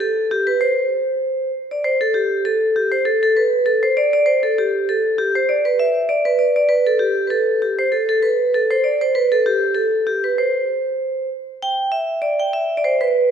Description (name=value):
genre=celtic folk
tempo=196 BPM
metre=4/4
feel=swing 56% on 8ths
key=C major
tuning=A4 = 440 Hz
part: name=vibraphone with medium hard mallets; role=solo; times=0.0-13.3 s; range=G4 to G5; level=-16 LUFS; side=equal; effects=none
room=wet scoring stage reverb, RT60 1.7 s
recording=recorded in a church or concert hall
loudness=-16 LUFS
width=side -8 dB against mid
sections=0.0-1.8 A section; 1.8-11.6 A section; 11.6-13.3 B section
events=none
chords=none